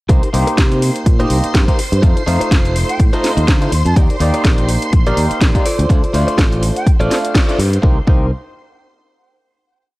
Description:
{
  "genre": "filtered disco house",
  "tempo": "124 BPM",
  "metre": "4/4",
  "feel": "swing 56% on 16ths",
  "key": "C dorian",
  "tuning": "A4 = 437 Hz",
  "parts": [
    { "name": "clav", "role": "accompaniment", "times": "0.1-8.3 s", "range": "A3 to F5", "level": "-21 LUFS", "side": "equal", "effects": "phaser, sidechain pumping" },
    { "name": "phased string machine", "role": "sustained chords", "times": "0.1-7.8 s", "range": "C5 to C6", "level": "-26 LUFS", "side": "equal", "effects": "ensemble chorus, phaser, sidechain pumping" },
    { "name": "direct-recorded clean electric guitar", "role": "riff", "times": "0.1-8.3 s", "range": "Eb4 to D5", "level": "-22 LUFS", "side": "equal", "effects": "vintage 12-bit sampler grit, sidechain pumping" },
    { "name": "modern bright fingered electric bass", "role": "bass", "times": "0.1-8.3 s", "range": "F1 to C3", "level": "-17 LUFS", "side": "equal", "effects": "tube saturation, sidechain pumping" },
    { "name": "electronic kick drum", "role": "drums", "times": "0.1-8.2 s", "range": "none", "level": "-13 LUFS", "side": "equal", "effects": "overdrive, studio reverb" },
    { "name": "house drum kit", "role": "drums", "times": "0.1-7.8 s", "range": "hi-hat, snare drum", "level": "-21 LUFS", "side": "equal", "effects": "overdrive, sidechain pumping on hats, studio reverb" },
    { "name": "mellow silver concert flute", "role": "melody", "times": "2.9-6.9 s", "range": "G5 to A5", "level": "-26 LUFS", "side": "right 2 dB", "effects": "sidechain pumping, analog delay" }
  ],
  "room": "digital ambience",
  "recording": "dry, gritty hardware recording, cassette tape",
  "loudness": "-12 LUFS",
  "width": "side -20 dB against mid",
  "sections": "0.1-7.8 drop; 7.8-9.8 final chord",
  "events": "drop 0.1-7.8; band accent 7.4",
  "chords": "0.1 Cm7; 2.0 F7; 4.0 Ebmaj7; 5.7 Dm7; 7.8 Cm7"
}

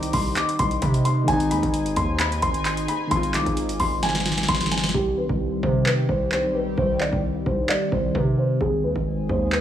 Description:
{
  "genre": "hip hop, trap",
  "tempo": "131 BPM",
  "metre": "4/4",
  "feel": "half-time",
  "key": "C harmonic minor",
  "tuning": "A4 = 436 Hz",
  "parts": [
    { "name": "dark concert grand piano", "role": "accompaniment", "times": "0.0-5.0 s", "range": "Eb3 to F4", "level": "-29 LUFS", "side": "left 2 dB", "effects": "low-pass filter" },
    { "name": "sweeping resonant pad", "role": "sustained chords", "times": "0.0-9.6 s", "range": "Eb3 to Ab5", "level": "-29 LUFS", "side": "equal", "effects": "chorus" },
    { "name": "distorted 808-style bass", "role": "bass", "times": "0.0-9.6 s", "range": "Ab1 to C3", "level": "-26 LUFS", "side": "equal", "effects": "distortion" },
    { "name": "booming analog drum machine", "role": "drums", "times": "0.0-9.6 s", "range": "handclaps, hi-hat, kick drum, snare drum", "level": "-26 LUFS", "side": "equal", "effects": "none" },
    { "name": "felt-muted upright piano", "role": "melody", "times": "0.1-9.6 s", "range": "G4 to D6", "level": "-25 LUFS", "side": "equal", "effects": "low-pass filter, tape echo" }
  ],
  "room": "light reverb",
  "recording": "studio ambience",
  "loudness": "-20 LUFS",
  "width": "side -10 dB against mid",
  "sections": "0.0-4.9 A section; 4.9-9.6 B section",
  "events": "drum fill 4.0-4.9; hi-hats muted 4.9-9.6",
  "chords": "0.0 Cm; 1.3 Ab; 4.9 Cm; 8.6 Ab"
}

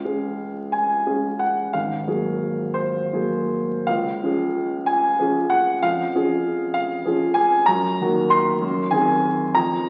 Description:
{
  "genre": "classical, romantic character piece for solo piano",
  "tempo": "51-67 BPM (dotted quarters)",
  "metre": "6/8",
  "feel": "rubato",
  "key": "Db major",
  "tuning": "A4 = 440 Hz",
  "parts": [
    { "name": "warm baby grand piano", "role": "solo", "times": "0.0-9.9 s", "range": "Ab1 to C6", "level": "-22 LUFS", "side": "equal", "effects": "none" }
  ],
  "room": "wet recital hall reverb, RT60 1.6 s",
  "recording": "very old 78 rpm record, vinyl crackle",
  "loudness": "-22 LUFS",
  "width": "mono",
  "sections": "0.0-9.9 A section",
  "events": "none",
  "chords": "0.0 Db; 1.7 Ab9; 3.9 Db; 5.8 Db/F; 7.7 Ebm/Gb; 8.6 Ab7/Gb"
}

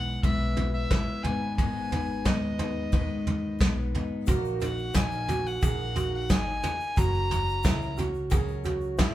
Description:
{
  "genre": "indie folk with a building arrangement",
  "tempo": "89 BPM",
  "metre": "4/4",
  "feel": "straight",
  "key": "unclear",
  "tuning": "A4 = 440 Hz",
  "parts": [
    { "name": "warm fiddle", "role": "melody", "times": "0.0-8.0 s", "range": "D#5 to A#5", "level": "-33 LUFS", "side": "left 2 dB", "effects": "none" },
    { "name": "fingerpicked steel-string acoustic guitar", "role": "accompaniment", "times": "0.0-7.0 s", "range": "G#2 to B4", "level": "-35 LUFS", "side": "left 2 dB", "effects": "none" },
    { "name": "picked steel-string acoustic guitar", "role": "accompaniment", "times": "0.0-9.1 s", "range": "G#2 to B4", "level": "-36 LUFS", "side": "left 4 dB", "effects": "none" },
    { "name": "upright bass", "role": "bass", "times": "0.0-9.1 s", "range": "F#1 to G#2", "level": "-32 LUFS", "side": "equal", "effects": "none" },
    { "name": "soft brush drum kit", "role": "drums", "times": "0.2-9.1 s", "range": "kick drum, snare drum, toms", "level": "-27 LUFS", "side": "equal", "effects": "none" },
    { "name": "warm upright piano", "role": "arpeggios", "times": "4.3-9.1 s", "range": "D#4 to G#4", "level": "-33 LUFS", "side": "right 4 dB", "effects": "none" },
    { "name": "egg shaker", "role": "percussion", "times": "4.3-9.1 s", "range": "none", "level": "-48 LUFS", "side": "left 8 dB", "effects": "none" }
  ],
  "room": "moderate large studio reverb, RT60 0.9 s",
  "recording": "band playing live in one room",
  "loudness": "-25 LUFS",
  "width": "side -14 dB against mid",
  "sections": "0.0-9.1 A section",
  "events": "none",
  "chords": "0.0 E; 1.2 G#m; 4.3 D#m/A#; 7.0 F#"
}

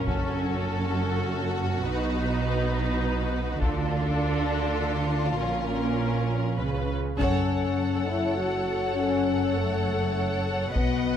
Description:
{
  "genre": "cinematic, epic orchestral film score",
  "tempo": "101 BPM",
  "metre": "3/4",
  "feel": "straight",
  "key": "F# minor from 7.2 s",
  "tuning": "A4 = 442 Hz",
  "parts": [
    { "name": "clear symphonic violin section", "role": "melody", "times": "0.0-11.2 s", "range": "A4 to F#5", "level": "-34 LUFS", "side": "left 4 dB", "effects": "none" },
    { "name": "rich studio violin section", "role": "second line", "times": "0.0-11.2 s", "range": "F4 to D#5", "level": "-33 LUFS", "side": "equal", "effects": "none" },
    { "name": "clear symphonic viola section", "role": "accompaniment", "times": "0.0-11.2 s", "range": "C#4 to B4", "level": "-32 LUFS", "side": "equal", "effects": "none" },
    { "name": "clear studio double bass section", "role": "bass", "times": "0.0-11.2 s", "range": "F#1 to D2", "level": "-30 LUFS", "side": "right 3 dB", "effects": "none" },
    { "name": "warm symphonic cello section", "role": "bass", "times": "0.0-11.2 s", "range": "F#2 to D3", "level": "-31 LUFS", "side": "right 2 dB", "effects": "none" },
    { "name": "taiko ensemble", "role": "drums", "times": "0.1-11.2 s", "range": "none", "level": "-30 LUFS", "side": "left 1 dB", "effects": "none" },
    { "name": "mellow French horn section", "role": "sustained chords", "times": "7.2-11.2 s", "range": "A3 to F#4", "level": "-27 LUFS", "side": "left 6 dB", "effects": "none" }
  ],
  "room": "moderate concert hall reverb, RT60 2.0 s",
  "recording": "none",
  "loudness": "-24 LUFS",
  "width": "side -9 dB against mid",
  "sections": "0.0-7.2 A section; 7.2-11.2 B section",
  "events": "build-up 0.0-7.2; band accent 7.2-7.8",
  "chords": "0.1 F#m; 1.8 B; 3.6 Dm; 5.4 A#m; 6.6 C#7; 7.2 F#m"
}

